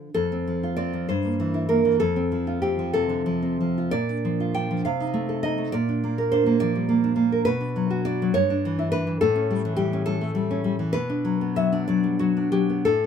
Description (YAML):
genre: romantic piece for solo classical guitar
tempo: 58-71 BPM (dotted quarters)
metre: 6/8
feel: rubato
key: F major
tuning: A4 = 439 Hz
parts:
  - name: nylon-string guitar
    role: solo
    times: 0.0-13.1 s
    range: F2 to G5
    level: -21 LUFS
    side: equal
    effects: none
room: moderate small room ambience, RT60 0.5 s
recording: minimal, uncompressed stereo recording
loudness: -21 LUFS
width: side -7 dB against mid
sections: 0.2-13.1 A section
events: none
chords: 0.2 F; 1.1 Edim/G; 2.0 F; 3.9 Bb; 4.8 Adim/C; 5.7 Bb; 7.5 Bm; 8.4 Em7/G; 9.2 A7; 11.0 Bm